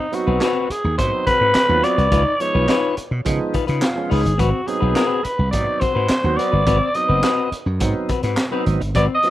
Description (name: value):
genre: funk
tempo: 105 BPM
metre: 4/4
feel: straight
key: unclear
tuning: A4 = 440 Hz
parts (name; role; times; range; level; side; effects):
- growling alto saxophone; melody; 0.0-9.3 s; Eb4 to Eb5; -20 LUFS; equal; none
- clean electric guitar; accompaniment; 0.0-9.3 s; C4 to C5; -24 LUFS; left 7 dB; none
- bright tonewheel organ; stabs; 0.1-9.3 s; F3 to Gb4; -27 LUFS; right 5 dB; overdrive, slow rotary speaker
- crunchy breakbeat drum kit; drums; 0.1-9.3 s; handclaps, hi-hat, kick drum, snare drum; -24 LUFS; right 1 dB; none
- slap bass; bass; 0.3-9.1 s; Gb1 to Db3; -20 LUFS; equal; none
room: studio reverb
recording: rough home demo mix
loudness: -16 LUFS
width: side -14 dB against mid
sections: 0.0-9.3 A section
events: alto saxophone solo 0.0-9.3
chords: 0.0 Ab7#9; 2.1 Db9; 4.4 Ab7#9